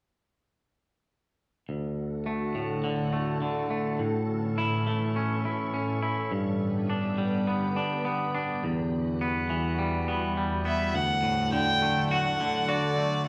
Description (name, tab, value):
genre	rock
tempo	104 BPM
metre	4/4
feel	straight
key	D major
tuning	A4 = 440 Hz
part	soft additive organ-like pad	sustained chords	2.0-13.2 s	D2 to A4	-34 LUFS	equal	ensemble chorus, built-in reverb
part	twangy electric guitar	arpeggios	1.7-13.3 s	D2 to F#4	-30 LUFS	equal	none
part	rich violin	melody	10.7-13.3 s	D5 to G5	-29 LUFS	equal	none
room	wet large studio reverb, RT60 1.2 s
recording	band playing live in one room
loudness	-28 LUFS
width	mono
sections	1.7-10.9 A section; 10.9-13.3 B section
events	none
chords	1.7 D; 4.0 A; 6.3 G; 8.6 Emadd9; 10.9 D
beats	| 1.68 2.26 2.84 3.42 | 4.00 4.58 5.15 5.73 | 6.31 6.89 7.47 8.05 | 8.63 9.21 9.79 10.36 | 10.94 11.52 12.10 12.68 | 13.26